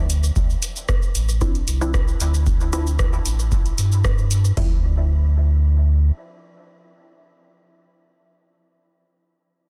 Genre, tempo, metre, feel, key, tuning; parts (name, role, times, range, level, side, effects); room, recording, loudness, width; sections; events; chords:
dub techno; 114 BPM; 4/4; straight; D minor; A4 = 440 Hz
pure sine sub bass; bass; 0.0-6.1 s; A1 to G2; -21 LUFS; equal; tube saturation, sidechain pumping
booming analog drum machine; drums; 0.1-4.5 s; cabasa, hi-hat, rim click; -31 LUFS; equal; soft clipping on snare, dub echo
booming analog drum machine; drums; 0.4-4.7 s; hi-hat, kick drum, toms; -24 LUFS; equal
filtered dub chord stab; stabs; 1.4-8.5 s; F3 to E4; -34 LUFS; equal; phaser, sidechain pumping, dub echo
digital ambience; dense, heavily limited modern master; -20 LUFS; mono
0.0-4.6 A section; 4.6-8.8 B section
filter sweep on synth stab 0.0-4.6
0.0 D7(no3); 4.6 Dm9